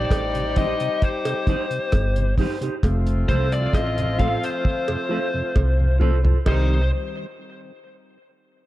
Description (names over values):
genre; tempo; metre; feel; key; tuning
roots reggae; 66 BPM; 4/4; straight; C dorian; A4 = 440 Hz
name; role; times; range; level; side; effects
biting lead guitar; melody; 0.0-6.9 s; C5 to F5; -27 LUFS; left 2 dB; overdrive, tape echo
dark horn section; second line; 0.0-6.8 s; C3 to G4; -29 LUFS; left 2 dB; tape echo
upright bass; bass; 0.0-6.9 s; F1 to C2; -21 LUFS; equal; none
cloth-damped thuddy drum kit; drums; 0.1-6.7 s; crash cymbal, hi-hat, kick drum, rim click, toms; -22 LUFS; equal; none
cowbell; percussion; 0.1-6.9 s; none; -33 LUFS; right 4 dB; none
mellow tonewheel organ; accompaniment; 0.4-6.8 s; F2 to C4; -31 LUFS; left 2 dB; slow rotary speaker, analog delay
mellow electric guitar; accompaniment; 0.6-6.7 s; Eb4 to C5; -31 LUFS; right 5 dB; tape echo
room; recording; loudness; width
light reverb, studio reverb; dark, warm production; -19 LUFS; side -15 dB against mid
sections
0.0-6.5 A section; 6.5-8.7 B section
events
drum fill 4.6-6.5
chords
0.0 Cm; 2.8 F; 6.5 Cm